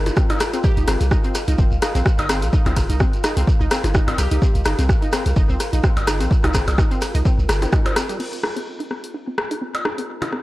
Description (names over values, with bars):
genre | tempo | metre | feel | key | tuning
minimal techno | 127 BPM | 4/4 | swing 55% on 16ths | C minor | A4 = 440 Hz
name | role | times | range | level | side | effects
punchy sub bass | bass | 0.0-7.7 s | G1 to C2 | -20 LUFS | equal | sidechain pumping
warbly tape-like pad | texture | 0.0-10.4 s | C4 to G5 | -32 LUFS | equal | chorus, built-in reverb, phaser, sidechain pumping
punchy analog drum machine | drums | 0.1-10.3 s | crash cymbal, hi-hat, ride cymbal, rim click | -28 LUFS | right 1 dB | none
electronic percussion blips and rim click | percussion | 0.1-10.4 s | none | -24 LUFS | left 1 dB | overdrive
shekere | percussion | 0.1-8.2 s | none | -33 LUFS | right 3 dB | none
resonant blip pluck | riff | 0.2-10.4 s | G3 to C5 | -28 LUFS | equal | chorus, sidechain pumping, analog delay
electronic kick drum | drums | 0.2-7.8 s | none | -18 LUFS | equal | none
glassy wavetable pluck | melody | 0.6-1.1, 4.2-4.8 s | G4 | -33 LUFS | left 1 dB | chorus, analog delay
room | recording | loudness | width
digital ambience | dry, gritty hardware recording, transformer saturation | -17 LUFS | side -17 dB against mid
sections
0.0-8.2 A section; 8.2-10.4 B section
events
drop 0.0-8.2; filter sweep on synth arpeggio sound 8.2-10.4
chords
0.0 Cm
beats
0.17 | 0.64 1.11 1.58 2.06 | 2.53 3.00 3.47 3.95 | 4.42 4.89 5.36 5.84 | 6.31 6.78 7.25 7.73 | 8.20 8.67 9.14 9.62 | 10.09